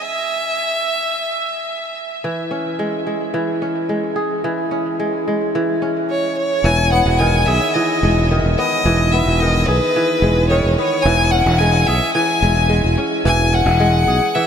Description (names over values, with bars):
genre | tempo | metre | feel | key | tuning
folktronica | 109 BPM | 4/4 | straight | E major | A4 = 442 Hz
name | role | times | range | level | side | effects
clear violin | melody | 0.0-2.0, 6.1-14.5 s | B4 to G#5 | -18 LUFS | left 1 dB | tape echo
kora | arpeggios | 2.2-14.5 s | D#3 to G#4 | -19 LUFS | equal | tape echo
modern bright fingered electric bass | bass | 6.6-14.2 s | E1 to B1 | -16 LUFS | equal | none
room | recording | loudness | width
moderate huge ambient reverb, RT60 7.4 s | dreamy mix soaked in reverb | -15 LUFS | side -8 dB against mid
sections
0.0-6.6 A section; 6.6-14.5 B section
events
none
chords
0.0 N.C.; 2.2 C#m/E; 6.6 Emaj7; 11.1 C#m/E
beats
| 0.04 0.59 1.14 1.69 | 2.24 2.79 3.34 3.89 | 4.44 5.00 5.54 6.09 | 6.65 7.20 7.75 8.30 | 8.85 9.40 9.95 10.50 | 11.05 11.60 12.15 12.70 | 13.25 13.80 14.35